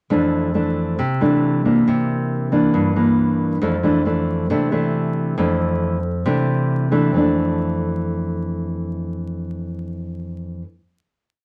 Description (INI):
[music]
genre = bossa nova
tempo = 136 BPM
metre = 4/4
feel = straight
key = F major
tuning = A4 = 440 Hz
[part]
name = nylon-string guitar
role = solo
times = 0.1-10.7 s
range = F2 to D4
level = -20 LUFS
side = equal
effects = none
[sound]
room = moderate studio reverb, RT60 0.6 s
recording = vinyl crackle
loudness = -20 LUFS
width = mono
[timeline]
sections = 0.1-7.1 A section; 7.1-10.7 final chord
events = none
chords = 0.1 F6; 1.9 C9; 3.6 F6